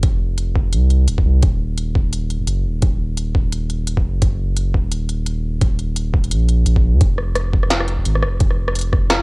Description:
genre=half-time drum and bass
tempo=172 BPM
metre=4/4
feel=swing 58% on 16ths, half-time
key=unclear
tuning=A4 = 440 Hz
part: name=saturated sub bass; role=bass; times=0.0-9.2 s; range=Eb1 to Eb2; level=-18 LUFS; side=equal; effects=none
part: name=electronic kick drum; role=drums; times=0.0-9.0 s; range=none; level=-17 LUFS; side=equal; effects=overdrive, studio reverb, cassette tape
part: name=industrial drum kit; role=drums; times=0.0-9.2 s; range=hi-hat, rim click, snare drum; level=-22 LUFS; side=equal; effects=studio reverb, cassette tape
room=little or no reverb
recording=home recording on cassette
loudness=-15 LUFS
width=side -33 dB against mid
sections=0.0-9.2 A section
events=none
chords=none

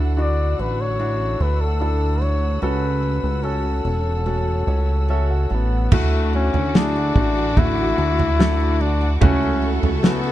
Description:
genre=pop ballad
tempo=73 BPM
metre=4/4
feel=straight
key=unclear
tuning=A4 = 440 Hz
part: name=clear baby grand piano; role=accompaniment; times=0.0-10.3 s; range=C#3 to A5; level=-26 LUFS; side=left 1 dB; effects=none
part: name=dark studio string section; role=sustained chords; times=0.0-10.3 s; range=D4 to E6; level=-34 LUFS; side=right 1 dB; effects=none
part: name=picked steel-string acoustic guitar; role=arpeggios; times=0.0-10.3 s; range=C#3 to F#4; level=-31 LUFS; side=right 7 dB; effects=none
part: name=chorused synth bass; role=bass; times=0.0-10.3 s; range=E1 to D2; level=-21 LUFS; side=equal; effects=none
part: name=warm flugelhorn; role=melody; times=0.2-10.3 s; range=A3 to D5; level=-24 LUFS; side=left 4 dB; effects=none
part: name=warm studio violin section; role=second line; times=5.9-10.3 s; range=F#4 to A4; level=-31 LUFS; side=equal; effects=none
part: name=loose indie drum kit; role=drums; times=5.9-10.2 s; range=crash cymbal, kick drum, snare drum, toms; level=-18 LUFS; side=right 1 dB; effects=none
room=little or no reverb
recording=dark, warm production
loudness=-17 LUFS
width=side -13 dB against mid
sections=0.0-5.9 A section; 5.9-10.3 B section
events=grand piano fill 4.3-5.9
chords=0.0 Dadd9; 2.6 A6; 5.9 Dadd9; 9.2 A6

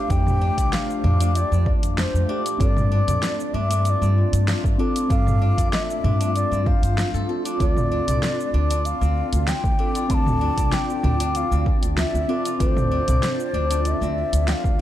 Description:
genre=organic downtempo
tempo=96 BPM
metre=4/4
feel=straight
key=D minor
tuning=A4 = 440 Hz
part: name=breathy mellow ney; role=melody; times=0.0-14.8 s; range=C5 to C6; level=-28 LUFS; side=left 2 dB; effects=ping-pong delay
part: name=muted felt-like synth keys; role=accompaniment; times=0.0-14.8 s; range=A3 to A4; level=-30 LUFS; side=equal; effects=chorus, sidechain pumping, ping-pong delay
part: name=granular cloud pad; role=sustained chords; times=0.0-14.8 s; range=A3 to D5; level=-32 LUFS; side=right 1 dB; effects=built-in reverb, sidechain pumping
part: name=steel-string zither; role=arpeggios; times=0.0-14.8 s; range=A3 to D5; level=-28 LUFS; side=left 2 dB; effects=ping-pong delay
part: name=upright bass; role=bass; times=0.1-14.7 s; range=C2 to G2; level=-22 LUFS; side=equal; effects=sidechain pumping
part: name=deep house drum kit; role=drums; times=0.1-14.8 s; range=cabasa, hi-hat, snare drum, toms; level=-28 LUFS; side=right 1 dB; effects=none
part: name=electronic kick drum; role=drums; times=0.1-14.8 s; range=none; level=-22 LUFS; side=equal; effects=none
room=light reverb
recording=dark, warm production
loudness=-19 LUFS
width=side -13 dB against mid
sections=0.0-14.8 A section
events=none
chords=0.0 F; 2.6 Gsus2; 7.6 Dm7

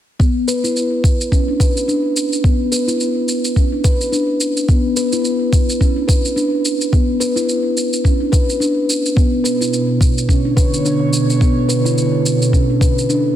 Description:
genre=organic downtempo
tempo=107 BPM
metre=4/4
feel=swing 57% on 16ths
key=B minor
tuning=A4 = 440 Hz
part: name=steel tongue drum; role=arpeggios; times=0.2-13.2 s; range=B3 to B4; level=-17 LUFS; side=equal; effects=low-pass filter, ping-pong delay
part: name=electronic kick drum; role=drums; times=0.2-12.9 s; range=none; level=-14 LUFS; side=equal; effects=studio reverb
part: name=shaker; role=drums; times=0.2-13.2 s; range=none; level=-24 LUFS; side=right 1 dB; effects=studio reverb
part: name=airy breathy pad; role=sustained chords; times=9.2-13.4 s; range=B2 to C#5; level=-18 LUFS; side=right 2 dB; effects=chorus, sidechain pumping
room=moderate lush hall reverb, RT60 1.9 s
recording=dense, heavily limited modern master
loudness=-14 LUFS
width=side -11 dB against mid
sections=0.2-13.4 A section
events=none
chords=0.2 Bm; 9.2 Bm9

